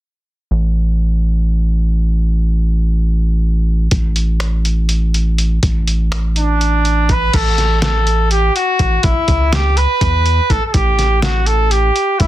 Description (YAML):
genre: progressive instrumental, band music in an uneven meter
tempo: 246 BPM (eighths)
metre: 7/8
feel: straight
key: A mixolydian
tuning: A4 = 440 Hz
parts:
  - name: rubbery square bass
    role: bass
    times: 0.5-12.3 s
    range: A1 to E2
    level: -14 LUFS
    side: equal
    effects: none
  - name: trip hop sampler-style drum kit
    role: drums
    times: 3.9-12.3 s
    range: crash cymbal, finger snaps, hi-hat, kick drum, snare drum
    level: -18 LUFS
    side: equal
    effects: none
  - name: clear trumpet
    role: melody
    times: 6.4-12.3 s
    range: D4 to B4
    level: -16 LUFS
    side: right 1 dB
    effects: none
room: little or no reverb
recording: dense, heavily limited modern master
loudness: -12 LUFS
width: side -14 dB against mid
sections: 0.5-7.3 A section; 7.3-12.3 B section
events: none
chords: 0.5 N.C.; 5.6 D5/A; 7.3 A; 10.7 Emadd11/A (rootless)